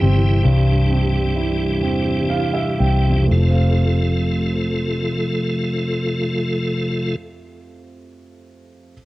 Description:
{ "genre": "pop", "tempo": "38-46 BPM (dotted quarters)", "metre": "6/8", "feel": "straight", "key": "F major", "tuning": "A4 = 439 Hz", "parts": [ { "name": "warm concert grand piano", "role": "accompaniment", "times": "0.0-8.9 s", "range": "F2 to G5", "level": "-25 LUFS", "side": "right 4 dB", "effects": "cassette tape" }, { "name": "tonewheel organ", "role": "sustained chords", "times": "0.0-7.2 s", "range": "C3 to A4", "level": "-21 LUFS", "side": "left 1 dB", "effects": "overdrive, chorus vibrato, fast rotary speaker, cassette tape" }, { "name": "vintage muted fingered electric bass", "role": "bass", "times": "0.0-7.1 s", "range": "F1 to E2", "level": "-18 LUFS", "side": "left 1 dB", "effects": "none" } ], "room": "light reverb, studio reverb", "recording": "home recording on cassette", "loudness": "-16 LUFS", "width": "side -18 dB against mid", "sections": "0.0-3.3 A section; 3.3-6.4 B section", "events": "slowing down 0.0-3.3; grand piano fill 1.8-3.3", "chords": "0.0 C; 3.3 F" }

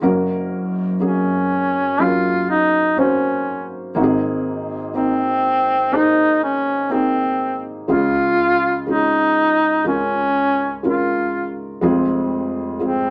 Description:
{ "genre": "pop", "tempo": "61 BPM", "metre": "4/4", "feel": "straight", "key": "Db major", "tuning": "A4 = 440 Hz", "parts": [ { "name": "felt-muted upright piano", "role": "accompaniment", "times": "0.0-13.1 s", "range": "F1 to C5", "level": "-22 LUFS", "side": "equal", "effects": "none" }, { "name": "clear duduk", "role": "melody", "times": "1.0-13.1 s", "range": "C4 to F4", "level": "-20 LUFS", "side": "equal", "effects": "none" } ], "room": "wet studio reverb, RT60 0.6 s", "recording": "none", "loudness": "-19 LUFS", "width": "mono", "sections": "0.0-13.1 A section", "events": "none", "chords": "0.0 Gb; 4.0 Abadd9; 7.9 Db; 11.8 Fm" }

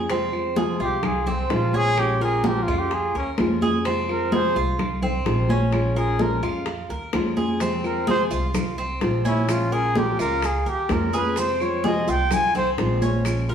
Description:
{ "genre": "latin, Cuban son and guajira", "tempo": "128 BPM", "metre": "4/4", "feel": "straight", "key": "F minor", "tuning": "A4 = 436 Hz", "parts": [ { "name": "nylon-string guitar", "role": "accompaniment", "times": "0.0-13.5 s", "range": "C3 to F4", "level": "-26 LUFS", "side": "left 2 dB", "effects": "none" }, { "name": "Cuban tres", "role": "arpeggios", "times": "0.0-13.5 s", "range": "C4 to Bb4", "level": "-28 LUFS", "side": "right 2 dB", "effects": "none" }, { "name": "upright bass", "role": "bass", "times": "0.0-13.5 s", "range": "Bb1 to F2", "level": "-27 LUFS", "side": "right 1 dB", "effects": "none" }, { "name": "bongos", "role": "percussion", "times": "0.1-13.5 s", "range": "none", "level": "-33 LUFS", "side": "left 3 dB", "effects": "none" }, { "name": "congas", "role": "percussion", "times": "0.1-13.5 s", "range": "none", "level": "-27 LUFS", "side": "right 1 dB", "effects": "none" }, { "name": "claves", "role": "percussion", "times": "0.3-13.5 s", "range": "none", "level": "-39 LUFS", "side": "right 1 dB", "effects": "none" }, { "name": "breathy trumpet", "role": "melody", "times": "0.8-12.7 s", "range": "C4 to Ab5", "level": "-24 LUFS", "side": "equal", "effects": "none" }, { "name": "maracas", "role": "percussion", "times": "7.6-13.5 s", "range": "none", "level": "-41 LUFS", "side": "right 4 dB", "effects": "none" } ], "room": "wet stone room reverb, RT60 1.1 s", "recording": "band playing live in one room, small room ambience", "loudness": "-20 LUFS", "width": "side -8 dB against mid", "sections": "0.0-13.5 A section", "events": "trumpet solo 0.0-13.5", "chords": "0.1 Fm; 2.0 Bbm7; 3.9 Fm; 5.7 Bbm7; 7.6 Fm; 9.5 Bbm7; 11.4 Fm" }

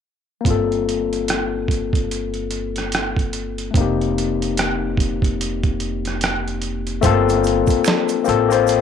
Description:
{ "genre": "R&B, neo-soul", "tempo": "73 BPM", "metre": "4/4", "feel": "swing 60% on 16ths", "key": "G minor", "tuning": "A4 = 440 Hz", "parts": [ { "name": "overdriven tine electric piano", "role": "accompaniment", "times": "0.4-8.8 s", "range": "A3 to C5", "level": "-20 LUFS", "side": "left 9 dB", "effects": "none" }, { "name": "upright bass", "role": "bass", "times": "0.5-8.8 s", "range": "F1 to A1", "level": "-25 LUFS", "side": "right 2 dB", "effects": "none" }, { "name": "boom bap sampler-style drum kit", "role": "drums", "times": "0.5-8.8 s", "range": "hi-hat, kick drum, rim click, snare drum", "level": "-22 LUFS", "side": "right 2 dB", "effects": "none" }, { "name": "tube shaker and finger snaps", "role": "percussion", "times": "7.0-8.8 s", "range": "none", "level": "-30 LUFS", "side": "right 16 dB", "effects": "none" } ], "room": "light reverb, small room ambience", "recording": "1960s-style stereo with parts hard left and right", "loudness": "-18 LUFS", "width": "side -7 dB against mid", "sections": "0.5-7.0 A section; 7.0-8.8 B section", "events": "none", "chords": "0.5 Gm11; 3.7 F9sus4; 7.0 Gm11" }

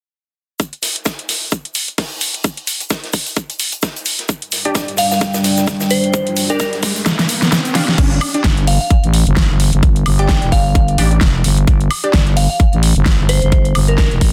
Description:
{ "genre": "bass house", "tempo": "130 BPM", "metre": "4/4", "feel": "swing 57% on 16ths", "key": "unclear", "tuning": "A4 = 440 Hz", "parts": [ { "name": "big rock drum kit", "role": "drums", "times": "0.6-7.9 s", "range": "hi-hat, shaker, snare drum", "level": "-28 LUFS", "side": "equal", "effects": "sidechain pumping on hats, high-pass filter on hats, high-pass filter on snare, sidechain pumping on perc, high-pass filter on perc, high-pass filter on room" }, { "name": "big-room dance drum kit", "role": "drums", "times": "0.6-14.3 s", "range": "crash cymbal, hi-hat, snare drum, woodblock", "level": "-21 LUFS", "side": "equal", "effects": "overdrive" }, { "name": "electronic kick drum", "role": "drums", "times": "0.6-14.3 s", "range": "none", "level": "-16 LUFS", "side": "equal", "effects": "overdrive, high-pass filter on kick" }, { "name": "dark analog pad", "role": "sustained chords", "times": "4.3-7.9 s", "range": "G3 to G5", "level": "-22 LUFS", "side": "equal", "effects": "chorus, sidechain pumping" }, { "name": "riser", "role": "sound effects", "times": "5.4-8.0 s", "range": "none", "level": "-27 LUFS", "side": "equal", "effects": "none" }, { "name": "orchestra-hit-like synth stab", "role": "stabs", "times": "4.7-12.1 s", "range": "D4 to F5", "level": "-26 LUFS", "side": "equal", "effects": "built-in reverb, sidechain pumping, delay" }, { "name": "glassy synth bell", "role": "melody", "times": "5.0-14.1 s", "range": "Bb4 to G5", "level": "-23 LUFS", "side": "equal", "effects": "chorus, delay" }, { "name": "growling FM bass", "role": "bass", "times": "8.0-14.3 s", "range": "F1 to A1", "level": "-16 LUFS", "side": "equal", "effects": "tube saturation, sidechain pumping" } ], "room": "light reverb", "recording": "dense, heavily limited modern master", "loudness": "-15 LUFS", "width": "mono", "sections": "0.6-8.0 A section; 8.0-14.3 B section", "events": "riser 5.4-8.0; drum fill 7.1-8.0", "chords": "0.6 G5" }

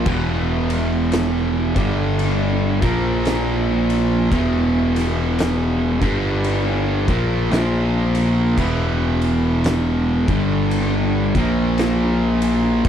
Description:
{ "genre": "stoner and doom metal", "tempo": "56 BPM", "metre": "4/4", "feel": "swing 60% on 8ths", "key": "unclear", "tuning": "A4 = 440 Hz", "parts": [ { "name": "fuzz guitar", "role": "riff", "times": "0.0-12.9 s", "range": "E2 to A#3", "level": "-19 LUFS", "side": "right 1 dB", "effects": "distortion" }, { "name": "fuzz picked electric bass", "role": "bass", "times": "0.0-12.9 s", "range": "E1 to A#1", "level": "-22 LUFS", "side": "equal", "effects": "overdrive" }, { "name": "oversized low-tuned drum kit", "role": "drums", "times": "0.1-12.9 s", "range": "crash cymbal, kick drum, ride cymbal, snare drum", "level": "-25 LUFS", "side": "equal", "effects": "none" } ], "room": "studio reverb", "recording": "none", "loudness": "-16 LUFS", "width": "side -9 dB against mid", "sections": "0.0-12.9 A section", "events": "none", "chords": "0.1 E5; 1.7 G5; 2.7 A#5; 4.3 E5; 5.9 G5; 7.0 A#5; 8.6 E5; 10.2 G5; 11.2 A#5" }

